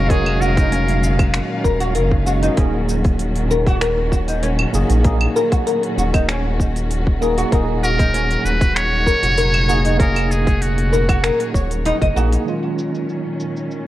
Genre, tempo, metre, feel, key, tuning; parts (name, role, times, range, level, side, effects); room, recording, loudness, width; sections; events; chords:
organic downtempo; 97 BPM; 4/4; straight; Eb minor; A4 = 440 Hz
trumpet with metal mute; melody; 0.0-1.3, 7.8-11.5 s; Gb4 to Db5; -22 LUFS; equal; ping-pong delay
tine electric piano; accompaniment; 0.0-13.9 s; Bb2 to Ab4; -24 LUFS; right 2 dB; medium stereo tremolo, sidechain pumping, low-pass filter, digital delay
dark studio string section; sustained chords; 0.0-13.9 s; Bb2 to F5; -26 LUFS; left 1 dB; sidechain pumping
oud; arpeggios; 0.0-12.3 s; Db4 to Eb5; -22 LUFS; left 2 dB; digital delay
round analog bass; bass; 0.0-12.4 s; Eb1 to Bb1; -19 LUFS; equal; sidechain pumping
electronic kick drum; drums; 0.1-12.1 s; -17 LUFS; equal; overdrive
organic electronic drum kit; drums; 0.1-13.8 s; claves, finger snaps, hi-hat, shaker; -27 LUFS; right 1 dB; overdrive, low-pass filter on hats, low-pass filter on cymbals, low-pass filter on perc, low-pass filter on snare, low-pass filter on room
light reverb; worn, warbling old tape, cassette tape, warbly pitch drift; -15 LUFS; side -14 dB against mid
0.0-12.5 A section; 12.5-13.9 B section
filter sweep on tine electric piano 12.5-13.9
0.0 Ebm7